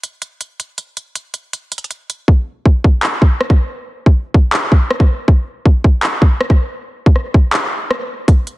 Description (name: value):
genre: hip hop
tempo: 160 BPM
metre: 4/4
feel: half-time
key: none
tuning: none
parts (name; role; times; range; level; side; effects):
- trap drum kit; drums; 0.0-8.6 s; handclaps, hi-hat, kick drum, rim click; -11 LUFS; equal; vintage 12-bit sampler grit
room: light reverb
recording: heavily compressed radio sound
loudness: -12 LUFS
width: side -19 dB against mid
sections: 0.0-2.3 A section; 2.3-8.6 B section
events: hi-hats muted 2.3-8.3; break 7.5-8.3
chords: none